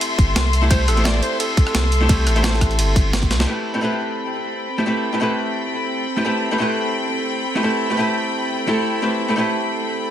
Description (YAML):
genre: liquid drum and bass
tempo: 173 BPM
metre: 4/4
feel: swing 54% on 16ths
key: A minor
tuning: A4 = 440 Hz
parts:
  - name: archtop guitar, miked and amplified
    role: accompaniment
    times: 0.0-10.1 s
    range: A3 to C5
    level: -22 LUFS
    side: equal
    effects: digital delay
  - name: rich studio string section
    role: sustained chords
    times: 0.0-10.1 s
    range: C4 to C6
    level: -24 LUFS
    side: left 2 dB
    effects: vintage 12-bit sampler grit, sidechain pumping, low-pass filter
  - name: breakbeat sampler-style drum kit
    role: drums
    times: 0.0-3.5 s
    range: hi-hat, ride cymbal, rim click, snare drum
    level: -23 LUFS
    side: right 2 dB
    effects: none
  - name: warm sub bass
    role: bass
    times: 0.2-3.5 s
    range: G1 to C2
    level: -18 LUFS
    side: equal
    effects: none
  - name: electronic kick drum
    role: drums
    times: 0.2-3.3 s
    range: none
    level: -16 LUFS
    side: equal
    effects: none
  - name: growling alto saxophone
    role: melody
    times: 0.7-3.1 s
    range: A4 to D5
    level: -28 LUFS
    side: right 2 dB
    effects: digital delay
room: light reverb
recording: dense, heavily limited modern master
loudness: -17 LUFS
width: side -10 dB against mid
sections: 0.0-3.5 A section; 3.5-10.1 B section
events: drop 0.0-3.5; drum fill 3.3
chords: 0.0 C6; 3.5 Am9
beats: 0.01 0.36 | 0.70 1.05 1.40 1.75 | 2.09 2.44 2.79 3.13 | 3.48 3.83 4.17 4.52 | 4.87 5.21 5.56 5.91 | 6.25 6.60 6.95 7.29 | 7.64 7.99 8.34 8.68 | 9.03 9.38 9.72 10.07